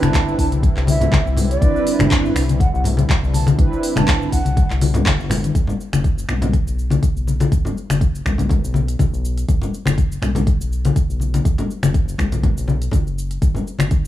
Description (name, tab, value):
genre	afro house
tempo	122 BPM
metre	4/4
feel	swing 54% on 16ths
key	B phrygian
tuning	A4 = 440 Hz
part	breathy hollow bansuri	melody	0.0-4.7 s	D5 to A5	-26 LUFS	right 2 dB	analog delay
part	warm analog pad	sustained chords	0.0-5.5 s	D3 to B4	-29 LUFS	right 1 dB	chorus, vintage 12-bit sampler grit, sidechain pumping
part	mellow synth brass	stabs	0.0-4.4 s	C4 to B4	-22 LUFS	right 4 dB	chorus, vintage 12-bit sampler grit, sidechain pumping, analog delay
part	round analog bass	bass	0.0-14.1 s	F#1 to C2	-21 LUFS	equal	tube saturation, sidechain pumping
part	afro-pop drum kit	drums	0.0-14.1 s	cabasa, finger snaps, handclaps, hi-hat, toms	-26 LUFS	equal	studio ambience
part	congas	percussion	0.0-13.9 s	none	-20 LUFS	left 4 dB	none
part	electronic kick drum	drums	0.1-14.0 s	none	-18 LUFS	equal	studio ambience
room	little or no reverb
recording	dry, gritty hardware recording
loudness	-16 LUFS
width	side -13 dB against mid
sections	0.0-5.6 A section; 5.6-14.1 B section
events	drop 0.0-5.6; drum fill 5.3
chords	0.0 Cmaj9; 5.6 B5; 13.4 C5